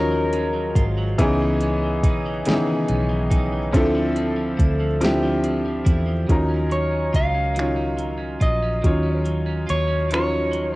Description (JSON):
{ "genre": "slow six-eight R&B", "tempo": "47 BPM (dotted quarters)", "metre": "6/8", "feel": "straight", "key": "unclear", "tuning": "A4 = 440 Hz", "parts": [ { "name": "electric guitar at the edge of break-up", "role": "melody", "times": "0.0-0.8, 6.7-10.8 s", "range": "Bb4 to F5", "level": "-25 LUFS", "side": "equal", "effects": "cassette tape" }, { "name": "electric guitar at the edge of break-up", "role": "second line", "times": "0.0-10.8 s", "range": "Db3 to F4", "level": "-32 LUFS", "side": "right 5 dB", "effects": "wide subtle chorus" }, { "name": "warm grand piano", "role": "accompaniment", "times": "0.0-10.8 s", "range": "Eb3 to Db5", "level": "-22 LUFS", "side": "left 1 dB", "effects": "none" }, { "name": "vintage muted fingered electric bass", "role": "bass", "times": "0.0-10.8 s", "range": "Ab1 to E2", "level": "-24 LUFS", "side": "equal", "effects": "tube saturation" }, { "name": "smooth R&B drum kit", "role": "drums", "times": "0.3-10.7 s", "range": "finger snaps, hi-hat, kick drum, snare drum", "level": "-20 LUFS", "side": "equal", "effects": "cassette tape" } ], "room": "little or no reverb", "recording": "home recording on cassette", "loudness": "-18 LUFS", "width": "side -20 dB against mid", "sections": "0.0-6.3 A section; 6.3-10.8 B section", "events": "none", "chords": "0.0 Ebm9; 1.2 Dbm9; 3.7 Dm9; 6.3 Ebm9" }